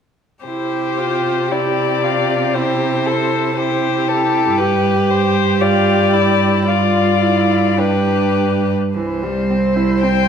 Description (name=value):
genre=classical, slow romantic movement for string quartet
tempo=48-59 BPM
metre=4/4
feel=rubato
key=C major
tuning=A4 = 441 Hz
part: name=muted cello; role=bass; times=0.4-10.3 s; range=C2 to C3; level=-19 LUFS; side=right 4 dB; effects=none
part: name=muted violin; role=melody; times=0.5-10.3 s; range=A4 to G5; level=-19 LUFS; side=left 9 dB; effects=none
part: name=muted violin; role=second line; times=0.5-10.3 s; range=E4 to C5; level=-21 LUFS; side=left 4 dB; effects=none
part: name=muted viola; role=accompaniment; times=0.5-10.3 s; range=E3 to G4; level=-20 LUFS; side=right 4 dB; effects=none
room=wet recital hall reverb, RT60 1.4 s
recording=minimal, uncompressed stereo recording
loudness=-14 LUFS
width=side -7 dB against mid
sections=0.5-9.0 A section; 9.0-10.3 B section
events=none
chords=0.5 C; 4.6 G7; 9.0 C